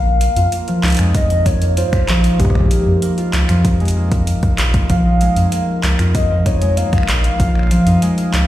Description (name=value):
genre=IDM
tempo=96 BPM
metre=4/4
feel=straight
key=Bb dorian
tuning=A4 = 440 Hz
part: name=warbly nostalgic lead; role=melody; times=0.0-8.3 s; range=G4 to F5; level=-22 LUFS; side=left 1 dB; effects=chorus, phaser, digital delay
part: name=concert harp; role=arpeggios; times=0.0-8.5 s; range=F3 to Bb4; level=-18 LUFS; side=equal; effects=vintage 12-bit sampler grit, low-pass filter, ping-pong delay
part: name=warm sub bass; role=bass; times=0.0-8.4 s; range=Bb1 to F2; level=-16 LUFS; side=equal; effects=none
part: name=booming analog drum machine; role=drums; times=0.2-8.5 s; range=finger snaps, handclaps, hi-hat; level=-24 LUFS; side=right 1 dB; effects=none
part: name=electronic kick drum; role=drums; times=1.1-7.5 s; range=none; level=-17 LUFS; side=equal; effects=overdrive
room=light reverb, digital ambience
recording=played on a big sound system in a bare room, large studio reverb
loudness=-13 LUFS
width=side -14 dB against mid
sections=0.0-8.5 A section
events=filter sweep on harp 0.0-8.5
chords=0.0 Bb5